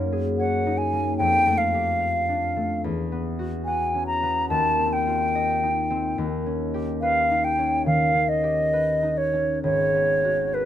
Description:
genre	classical, impressionist duo for flute and harp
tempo	65-75 BPM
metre	4/4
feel	rubato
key	unclear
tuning	A4 = 439 Hz
part	concert harp	accompaniment	0.0-10.7 s	G#1 to F#5	-25 LUFS	left 2 dB	none
part	hollow concert flute	melody	0.4-10.7 s	B4 to A#5	-22 LUFS	equal	none
room	light reverb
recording	close, detailed microphones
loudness	-21 LUFS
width	side -11 dB against mid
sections	0.0-10.7 A section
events	none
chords	0.0 F#69; 1.2 F69; 2.8 Esus2; 4.5 D#69; 6.2 D#aug7; 9.6 G#m7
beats	0.39 1.19 2.00 | 2.83 3.66 4.49 5.34 | 6.18 7.02 7.86 8.72 | 9.63 10.54

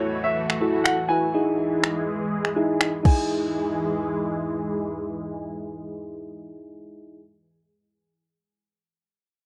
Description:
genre	dance-pop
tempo	123 BPM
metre	4/4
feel	straight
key	E major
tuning	A4 = 438 Hz
part	clear concert grand piano	melody	0.0-7.2 s	C#5 to G#5	-30 LUFS	equal	low-pass filter, tape echo
part	soft electric-piano-like synth keys	accompaniment	0.0-7.2 s	D#4 to B4	-28 LUFS	equal	chorus, sidechain pumping, low-pass filter
part	lush unison pad	sustained chords	0.0-7.2 s	E3 to G#4	-32 LUFS	equal	chorus, phaser, sidechain pumping, low-pass filter
part	smooth R&B drum kit	drums	0.5-3.2 s	crash cymbal, finger snaps, kick drum	-24 LUFS	equal	overdrive
room	light reverb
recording	cassette tape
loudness	-24 LUFS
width	mono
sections	0.0-3.3 A section; 3.3-7.2 B section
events	filter sweep 0.0-3.3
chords	0.0 F#m7; 1.3 Emaj7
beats	0.37 0.86 | 1.34 1.83 2.32 2.81 | 3.29 3.78 4.27 4.76 | 5.25 5.74 6.22 6.71

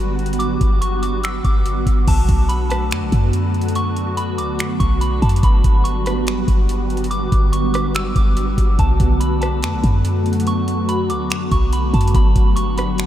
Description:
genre	hip hop, atmospheric cloud-rap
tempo	143 BPM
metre	4/4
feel	half-time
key	B minor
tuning	A4 = 440 Hz
part	glassy FM pad	sustained chords	0.0-13.1 s	D3 to F#4	-22 LUFS	equal	ensemble chorus, built-in reverb, sidechain pumping
part	clean 808-style bass	bass	0.0-13.1 s	G1 to F#2	-19 LUFS	equal	none
part	booming analog drum machine	drums	0.2-13.1 s	crash cymbal, finger snaps, hi-hat, kick drum, rim click	-20 LUFS	equal	overdrive
part	soft synth bell	melody	0.4-13.1 s	A5 to E6	-26 LUFS	equal	chorus, low-pass filter, diffuse ambient delay
room	light reverb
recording	none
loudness	-15 LUFS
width	side -12 dB against mid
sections	0.0-2.1 A section; 2.1-13.1 B section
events	none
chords	0.0 Gmaj7; 2.1 Bm7; 5.4 Gmaj7; 8.8 Bm7; 12.1 Gmaj7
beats	| 0.40 0.82 1.24 1.66 | 2.08 2.50 2.92 3.33 | 3.75 4.17 4.59 5.01 | 5.43 5.85 6.27 6.69 | 7.11 7.53 7.95 8.37 | 8.79 9.21 9.63 10.05 | 10.47 10.89 11.31 11.73 | 12.15 12.56 12.98

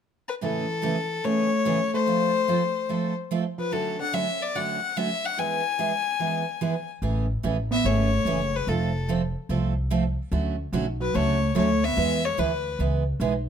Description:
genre	country, western swing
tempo	146 BPM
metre	4/4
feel	swing 67% on 8ths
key	A major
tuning	A4 = 439 Hz
part	clear fiddle	melody	0.3-12.8 s	A4 to G#5	-26 LUFS	left 6 dB	none
part	hollow-body jazz guitar	second line	0.4-12.8 s	D3 to E4	-29 LUFS	right 1 dB	none
part	picked steel-string acoustic guitar	accompaniment	0.4-13.3 s	A2 to A4	-28 LUFS	right 5 dB	none
part	upright bass	bass	7.0-13.5 s	F1 to E2	-26 LUFS	equal	none
room	moderate studio reverb, RT60 0.7 s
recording	none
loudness	-23 LUFS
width	side -8 dB against mid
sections	0.4-7.0 A section; 7.0-13.5 B section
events	none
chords	0.4 Amaj7; 2.1 F; 3.7 Dmaj7; 5.4 E; 7.0 Amaj7; 8.7 F; 10.3 Dmaj7; 12.0 E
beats	0.00 | 0.42 0.83 1.24 1.66 | 2.07 2.48 2.90 3.31 | 3.72 4.14 4.55 4.96 | 5.38 5.79 6.20 6.61 | 7.02 7.44 7.85 8.26 | 8.67 9.08 9.49 9.91 | 10.32 10.73 11.14 11.55 | 11.97 12.38 12.79 13.20

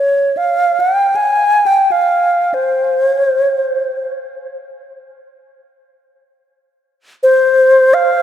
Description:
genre	world meditative, free-time meditation music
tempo	free time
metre	none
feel	none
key	F hirajoshi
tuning	A4 = 440 Hz
part	alto flute	solo	0.0-8.2 s	C5 to Ab5	-11 LUFS	equal	diffuse ambient delay
room	wet church reverb, RT60 3.2 s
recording	none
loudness	-11 LUFS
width	side -10 dB against mid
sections	0.0-8.2 A section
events	none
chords	none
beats	free time

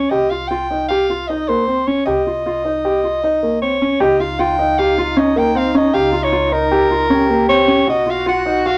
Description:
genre	contemporary instrumental, chamber music in an uneven meter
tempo	155 BPM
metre	5/4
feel	straight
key	Db lydian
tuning	A4 = 438 Hz
part	clear soprano saxophone	melody	0.0-8.8 s	Bb4 to G5	-20 LUFS	equal	none
part	dark baby grand piano	arpeggios	0.0-8.8 s	Bb3 to G4	-19 LUFS	equal	none
part	upright bass	bass	0.0-8.8 s	Cb2 to Db2	-32 LUFS	equal	none
part	warm French horn	second line	4.0-8.8 s	Eb4 to G4	-24 LUFS	equal	none
part	celesta	texture	4.4-5.1 s	F5	-26 LUFS	equal	none
room	wet studio reverb, RT60 0.5 s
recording	none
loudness	-16 LUFS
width	mono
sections	0.0-4.0 A section; 4.0-8.8 A section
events	none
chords	0.1 Cm; 4.0 Db69; 7.9 Cb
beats	| 0.12 0.51 0.90 1.29 1.68 | 2.06 2.45 2.84 3.23 3.62 | 4.01 4.39 4.78 5.17 5.56 | 5.95 6.33 6.72 7.11 7.50 | 7.88 8.27 8.66

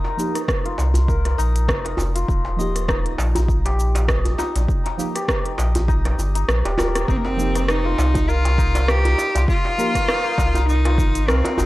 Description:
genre	organic downtempo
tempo	100 BPM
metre	4/4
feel	swing 56% on 16ths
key	unclear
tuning	A4 = 440 Hz
part	deep mellow chord stab	accompaniment	0.0-10.0 s	F3 to G4	-29 LUFS	right 2 dB	chorus, phaser, sidechain pumping, analog delay
part	santur	arpeggios	0.0-11.7 s	Eb4 to Eb5	-27 LUFS	left 3 dB	analog delay
part	djembe	percussion	0.0-11.7 s	none	-27 LUFS	right 1 dB	none
part	organic electronic drum kit	drums	0.2-11.7 s	hi-hat, rim click, shaker	-26 LUFS	right 1 dB	overdrive
part	electronic kick drum	drums	0.5-11.1 s	none	-22 LUFS	equal	none
part	warm sub bass	bass	0.8-11.7 s	Eb1 to C2	-20 LUFS	equal	sidechain pumping
part	clear cello	melody	7.1-11.7 s	Bb3 to G4	-22 LUFS	equal	analog delay
room	digital ambience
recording	dry, gritty hardware recording, cassette tape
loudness	-17 LUFS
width	side -17 dB against mid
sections	0.0-7.1 A section; 7.1-11.7 B section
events	kick drops out 6.5-7.1; drum fill 6.8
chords	0.0 F9sus4; 2.3 Eb; 7.1 F9sus4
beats	0.48 1.08 1.68 | 2.28 2.88 3.48 4.08 | 4.68 5.28 5.88 6.48 | 7.08 7.68 8.28 8.88 | 9.48 10.08 10.68 11.28

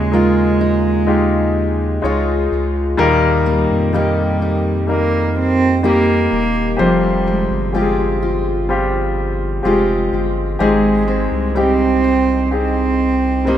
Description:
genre	pop ballad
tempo	63 BPM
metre	4/4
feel	straight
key	Ab major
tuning	A4 = 440 Hz
part	warm cello	melody	0.0-13.6 s	G3 to C4	-18 LUFS	right 4 dB	none
part	clear baby grand piano	accompaniment	0.0-13.6 s	Ab2 to Db5	-19 LUFS	left 2 dB	none
part	fingerpicked steel-string acoustic guitar	arpeggios	0.0-13.6 s	F2 to G4	-19 LUFS	left 2 dB	digital delay
part	saturated sub bass	bass	0.0-13.6 s	Eb1 to F2	-21 LUFS	equal	none
room	moderate lush hall reverb, RT60 2.8 s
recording	rough home demo mix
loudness	-14 LUFS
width	side -10 dB against mid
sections	0.0-13.6 A section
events	none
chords	0.0 Dbadd9; 3.0 Eb; 6.8 Fmadd9; 10.6 Abmaj7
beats	0.13 1.08 2.03 | 2.98 3.94 4.89 5.84 | 6.79 7.75 8.70 9.65 | 10.60 11.56 12.51 13.46

